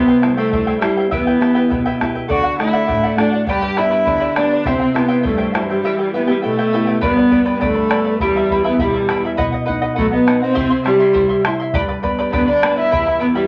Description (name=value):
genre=andean folk, Andean ensemble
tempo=102 BPM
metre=2/4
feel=straight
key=E minor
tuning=A4 = 439 Hz
part: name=mellow hollow polished pan flute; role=melody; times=0.0-13.5 s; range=E4 to G5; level=-22 LUFS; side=equal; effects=none
part: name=rich viola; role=second line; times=0.0-13.5 s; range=E3 to G4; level=-20 LUFS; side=equal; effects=none
part: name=charango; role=accompaniment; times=0.0-13.5 s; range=E4 to C6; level=-24 LUFS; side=equal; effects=none
part: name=nylon-string guitar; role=accompaniment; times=0.0-13.5 s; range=E2 to G4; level=-25 LUFS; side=equal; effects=none
part: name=bombo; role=percussion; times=0.2-13.1 s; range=none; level=-27 LUFS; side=equal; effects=none
room=wet club reverb, RT60 0.6 s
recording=none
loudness=-16 LUFS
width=mono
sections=0.0-7.0 A section; 7.0-13.5 B section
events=none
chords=0.0 C; 1.1 Em; 2.3 D; 3.5 G; 4.7 C; 5.8 Em; 7.0 G; 8.2 Em; 9.4 B; 10.6 C; 11.7 G; 12.9 Em